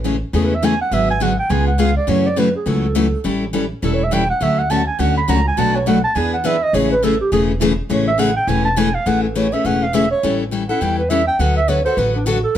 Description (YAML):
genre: acoustic string swing (jazz manouche)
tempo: 206 BPM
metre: 4/4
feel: swing 59% on 8ths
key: A major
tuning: A4 = 441 Hz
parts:
  - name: picked steel-string acoustic guitar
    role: accompaniment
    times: 0.0-12.6 s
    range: B2 to A4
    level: -19 LUFS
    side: left 5 dB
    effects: none
  - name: picked steel-string acoustic guitar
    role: accompaniment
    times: 0.0-8.9 s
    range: B2 to B4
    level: -24 LUFS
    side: right 6 dB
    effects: none
  - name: upright bass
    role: bass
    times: 0.0-12.6 s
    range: E1 to F#2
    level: -21 LUFS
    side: equal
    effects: none
  - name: breathy clarinet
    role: melody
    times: 0.4-12.6 s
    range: D4 to B5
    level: -19 LUFS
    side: right 3 dB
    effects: plate reverb
room: moderate studio reverb, RT60 0.6 s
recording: none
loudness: -15 LUFS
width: side -10 dB against mid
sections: 0.0-9.1 A section; 9.1-12.6 A section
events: clarinet solo 0.0-12.6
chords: 0.0 Amaj7; 0.9 G#m7b5; 1.5 C#7; 2.1 F#m7; 3.2 A7; 4.4 Dmaj7; 5.6 Bm7; 6.2 E7; 6.7 Amaj7; 10.2 A7; 11.4 D6